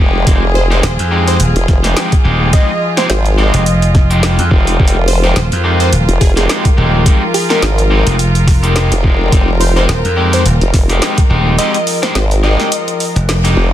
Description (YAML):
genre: glitch hop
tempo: 106 BPM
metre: 4/4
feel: swing 56% on 16ths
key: F minor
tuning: A4 = 436 Hz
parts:
  - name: dark chamber string section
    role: sustained chords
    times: 0.0-13.7 s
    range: F3 to Bb4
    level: -20 LUFS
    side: equal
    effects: sidechain pumping
  - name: electric guitar at the edge of break-up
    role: stabs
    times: 0.0-13.7 s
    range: Ab3 to G4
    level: -18 LUFS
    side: left 1 dB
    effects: sidechain pumping, ping-pong delay
  - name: formant-sweep wobble bass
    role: bass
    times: 0.0-13.7 s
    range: F1 to Ab1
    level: -13 LUFS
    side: equal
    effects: chorus, tube saturation
  - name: drum and bass drum kit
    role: drums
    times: 0.3-13.5 s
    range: hi-hat, snare drum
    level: -20 LUFS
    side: equal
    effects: overdrive, studio reverb
  - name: electronic kick drum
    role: drums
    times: 0.3-11.3 s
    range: none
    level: -10 LUFS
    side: equal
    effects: overdrive, studio reverb
  - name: plucky unison lead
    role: melody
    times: 0.6-13.2 s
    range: Ab4 to Eb5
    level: -20 LUFS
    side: equal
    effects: ping-pong delay
  - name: slap bass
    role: bass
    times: 0.8-13.5 s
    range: Eb1 to F2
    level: -12 LUFS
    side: equal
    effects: none
room: digital ambience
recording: dense, heavily limited modern master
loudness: -9 LUFS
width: side -12 dB against mid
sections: 0.0-13.7 A section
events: kick drops out 11.6-13.7; band accent 13.3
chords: 0.0 Fm7